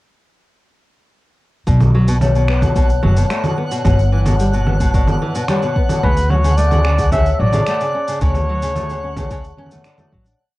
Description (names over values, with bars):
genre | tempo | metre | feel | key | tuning
folktronica | 110 BPM | 4/4 | straight | D major | A4 = 440 Hz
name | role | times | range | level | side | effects
vibraphone with medium hard mallets | second line | 1.7-10.4 s | C#5 to A5 | -25 LUFS | left 5 dB | analog delay
nylon-string guitar | arpeggios | 1.7-10.4 s | B2 to D4 | -23 LUFS | equal | none
upright bass | bass | 1.7-10.3 s | F#1 to D2 | -16 LUFS | equal | none
electronic kick drum | drums | 1.7-10.2 s | none | -18 LUFS | equal | cassette tape
electronic shaker, congas and finger snaps | drums | 1.7-10.4 s | none | -22 LUFS | right 1 dB | cassette tape
twinkling granular texture | texture | 2.0-10.4 s | F#5 | -30 LUFS | equal | built-in reverb
warm flugelhorn | melody | 6.0-9.8 s | B4 to E5 | -20 LUFS | equal | cassette tape
room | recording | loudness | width
little or no reverb | home recording on cassette | -13 LUFS | side -18 dB against mid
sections
1.7-10.4 groove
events
fade-out 7.5-10.4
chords
1.7 Bm7; 3.9 G; 6.0 Dmaj7